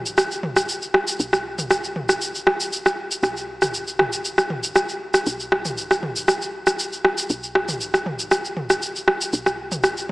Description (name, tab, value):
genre	afro house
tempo	118 BPM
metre	4/4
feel	straight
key	unclear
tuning	A4 = 440 Hz
part	woody FM bass	bass	0.0-10.1 s	B1	-31 LUFS	equal	tube saturation
part	house drum kit	drums	0.1-10.1 s	rim click, shaker, toms	-20 LUFS	equal	overdrive
room	wet concert hall reverb, RT60 1.8 s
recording	small speaker sound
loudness	-20 LUFS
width	side -21 dB against mid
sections	0.0-10.1 A section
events	none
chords	none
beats	0.18 0.69 | 1.20 1.71 2.21 2.72 | 3.23 3.74 4.25 4.76 | 5.26 5.77 6.28 6.79 | 7.30 7.81 8.32 8.82 | 9.33 9.84